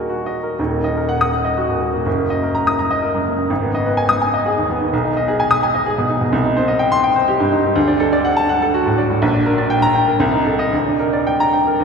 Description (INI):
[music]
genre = classical, virtuoso piano study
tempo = 109-129 BPM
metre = 3/4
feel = rubato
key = Eb minor, G minor from 6.3 s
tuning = A4 = 439 Hz
[part]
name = clear baby grand piano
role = solo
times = 0.0-11.8 s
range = Eb1 to Eb6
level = -15 LUFS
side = equal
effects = none
[sound]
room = wet cathedral reverb, RT60 4.4 s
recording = minimal, uncompressed stereo recording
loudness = -15 LUFS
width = side -5 dB against mid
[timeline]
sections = 0.6-11.8 A section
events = none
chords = 0.0 Ebm; 2.1 Ebm/Gb; 3.5 Abm; 4.9 Abm/Cb; 6.3 Cm; 7.8 D; 9.2 Gm/Bb; 10.2 Adim/C; 10.7 Gm/D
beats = 0.09 | 0.59 1.09 1.57 | 2.06 2.54 3.02 | 3.50 3.97 4.45 | 4.93 5.39 5.86 | 6.33 6.80 7.28 | 7.76 8.24 8.73 | 9.21 9.70 10.20 | 10.72 11.27 11.80